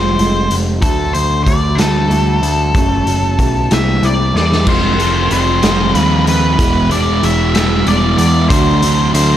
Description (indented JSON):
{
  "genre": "quiet-loud alternative rock",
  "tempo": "62 BPM (dotted quarters)",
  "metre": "6/8",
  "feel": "straight",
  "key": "unclear",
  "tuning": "A4 = 440 Hz",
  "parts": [
    { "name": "octave-fuzz lead guitar", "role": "melody", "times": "0.0-9.4 s", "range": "A4 to E5", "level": "-18 LUFS", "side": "left 2 dB", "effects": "distortion" },
    { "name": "fingerpicked steel-string acoustic guitar", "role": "arpeggios", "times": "0.0-9.4 s", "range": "F#2 to F4", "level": "-21 LUFS", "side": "right 1 dB", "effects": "none" },
    { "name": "growling picked electric bass", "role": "bass", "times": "0.0-9.4 s", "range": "E1 to E2", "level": "-16 LUFS", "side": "equal", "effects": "overdrive" },
    { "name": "raw garage drum kit", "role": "drums", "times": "0.2-9.3 s", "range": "crash cymbal, hi-hat, kick drum, snare drum", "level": "-17 LUFS", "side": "equal", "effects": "none" },
    { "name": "fuzz guitar", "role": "riff", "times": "4.7-9.4 s", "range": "D3 to F4", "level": "-16 LUFS", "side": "right 1 dB", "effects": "distortion" }
  ],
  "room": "little or no reverb",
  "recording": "none",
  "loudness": "-11 LUFS",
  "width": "side -11 dB against mid",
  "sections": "0.0-4.7 A section; 4.7-9.4 B section",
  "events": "drum fill 4.4-4.7",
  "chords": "0.0 Fm; 0.8 D; 2.8 F#m; 3.7 C7; 4.7 Fm; 6.6 E; 8.5 D",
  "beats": "| 0.83 1.79 | 2.75 3.71 | 4.67 5.63 | 6.59 7.55 | 8.50"
}